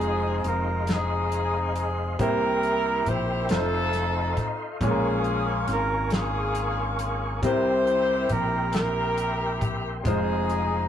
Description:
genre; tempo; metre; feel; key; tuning
slow gospel; 46 BPM (dotted quarters); 6/8; straight; F minor; A4 = 440 Hz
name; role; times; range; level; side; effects
warm saxophone section; melody; 0.0-10.9 s; C4 to C5; -26 LUFS; equal; none
clear baby grand piano; accompaniment; 0.0-10.9 s; Bb2 to C5; -31 LUFS; equal; none
mellow tonewheel organ; sustained chords; 0.0-10.9 s; Ab4 to Db6; -34 LUFS; equal; slow rotary speaker, chorus vibrato
fingered electric bass; bass; 0.0-10.9 s; F1 to C2; -29 LUFS; equal; none
warm soul drum kit; drums; 0.0-10.7 s; hi-hat, kick drum, snare drum; -29 LUFS; left 1 dB; none
room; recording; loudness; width
wet booth ambience, RT60 0.2 s; rough rehearsal-room recording; -23 LUFS; side -9 dB against mid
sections
0.0-10.9 A section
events
none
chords
0.0 Fm7; 2.2 C7; 3.5 F7; 4.8 Bbm7; 7.4 C7; 10.0 Fm7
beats
0.88 | 2.19 3.50 | 4.81 6.12 | 7.43 8.74 | 10.05

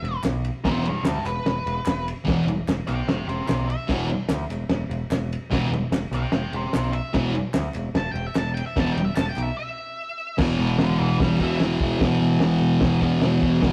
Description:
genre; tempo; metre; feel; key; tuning
garage rock duo or trio; 148 BPM; 4/4; straight; E minor; A4 = 440 Hz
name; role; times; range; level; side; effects
octave-fuzz lead guitar; melody; 0.0-11.6 s; G4 to A5; -32 LUFS; equal; distortion
growling picked electric bass; bass; 0.0-13.7 s; E1 to D2; -30 LUFS; equal; overdrive
cloth-damped thuddy drum kit; drums; 0.0-13.7 s; crash cymbal, hi-hat, kick drum, ride cymbal, snare drum; -29 LUFS; equal; none
group handclap; percussion; 0.2-9.5 s; none; -43 LUFS; equal; none
thick fuzz guitar; riff; 0.6-13.7 s; E2 to E3; -25 LUFS; equal; distortion
room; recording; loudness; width
moderate stone room reverb, RT60 1.1 s; rough rehearsal-room recording, warm saturation; -24 LUFS; mono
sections
0.0-10.4 A section; 10.4-13.7 B section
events
lead electric guitar solo 0.0-10.4; break 9.6-10.4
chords
0.0 Em; 10.4 E5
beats
0.25 | 0.65 1.06 1.46 1.87 | 2.27 2.68 3.08 3.49 | 3.89 4.30 4.70 5.11 | 5.51 5.92 6.33 6.73 | 7.14 7.54 7.95 8.36 | 8.76 9.17 9.57 9.98 | 10.38 10.79 11.20 11.60 | 12.01 12.41 12.81 13.22 | 13.62

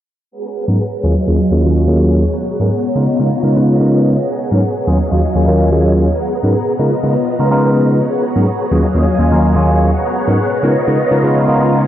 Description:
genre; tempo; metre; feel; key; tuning
house; 125 BPM; 4/4; straight; G# dorian; A4 = 440 Hz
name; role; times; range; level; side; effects
string machine, full ensemble; sustained chords; 0.3-11.9 s; F#3 to A#5; -17 LUFS; equal; phaser, ensemble chorus, low-pass filter
bell-like tine electric piano; accompaniment; 0.7-11.8 s; D#2 to B4; -13 LUFS; equal; phaser, low-pass filter
room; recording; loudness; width
light reverb, digital ambience; dry, gritty hardware recording; -11 LUFS; side -12 dB against mid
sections
0.3-11.9 A section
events
filter sweep 0.3-11.9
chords
0.3 G#m11; 1.0 D#m11; 2.2 G#m11; 3.0 C#13; 4.2 G#m11; 4.9 D#m11; 6.1 G#m11; 6.8 C#13; 8.0 G#m11; 8.7 D#m11; 9.9 G#m11; 10.6 C#13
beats
| 0.32 0.80 1.27 1.75 | 2.23 2.71 3.19 3.67 | 4.16 4.63 5.12 5.59 | 6.08 6.55 7.04 7.51 | 8.00 8.47 8.96 9.44 | 9.91 10.39 10.88 11.36 | 11.84

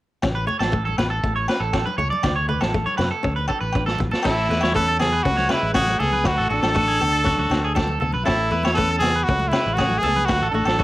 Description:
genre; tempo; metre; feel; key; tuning
highlife guitar band; 119 BPM; 4/4; straight; A major; A4 = 440 Hz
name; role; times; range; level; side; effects
flamenco guitar; accompaniment; 0.2-10.8 s; A3 to D4; -30 LUFS; left 3 dB; cassette tape
fingered electric bass; bass; 0.2-10.8 s; A1 to F#2; -25 LUFS; equal; none
vintage drum kit; drums; 0.2-10.8 s; crash cymbal, kick drum, snare drum; -25 LUFS; equal; cassette tape
agogo bells; percussion; 0.2-10.8 s; none; -32 LUFS; left 3 dB; none
congas; percussion; 0.2-10.8 s; none; -32 LUFS; left 1 dB; none
electric guitar at the edge of break-up; arpeggios; 0.4-10.8 s; F#4 to D5; -25 LUFS; right 2 dB; wide subtle chorus, cassette tape, plate reverb
brilliant trumpet; melody; 4.2-10.8 s; E4 to A4; -21 LUFS; equal; plate reverb
breathy alto saxophone; second line; 4.2-10.8 s; G#3 to D4; -30 LUFS; right 3 dB; cassette tape, plate reverb
room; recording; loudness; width
light reverb; home recording on cassette; -18 LUFS; side -16 dB against mid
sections
0.2-4.2 A section; 4.2-10.8 B section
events
drum fill 3.2-4.2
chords
0.2 A; 2.2 D5; 4.2 A; 6.3 D; 8.3 A; 10.3 D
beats
| 0.23 0.73 1.23 1.74 | 2.24 2.74 3.24 3.75 | 4.25 4.75 5.25 5.75 | 6.26 6.76 7.26 7.76 | 8.27 8.77 9.27 9.78 | 10.28 10.79

